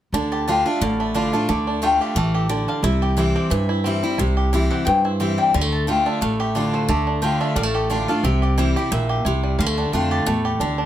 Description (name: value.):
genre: bluegrass.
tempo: 178 BPM.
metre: 4/4.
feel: swing 54% on 8ths.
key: D minor.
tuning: A4 = 439 Hz.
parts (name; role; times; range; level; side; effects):
bluegrass banjo; melody; 0.1-10.9 s; D3 to G4; -25 LUFS; right 3 dB; none.
picked steel-string acoustic guitar; accompaniment; 0.1-10.9 s; G2 to F4; -22 LUFS; left 1 dB; none.
upright bass; bass; 0.1-10.9 s; A1 to G2; -23 LUFS; equal; none.
mandolin; melody; 0.3-10.6 s; A4 to A5; -25 LUFS; left 4 dB; none.
room: light reverb.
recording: none.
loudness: -18 LUFS.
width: side -11 dB against mid.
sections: 0.1-10.9 A section.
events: none.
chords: 0.1 Dm; 2.8 C; 5.5 Dm; 8.2 C; 9.6 Dm.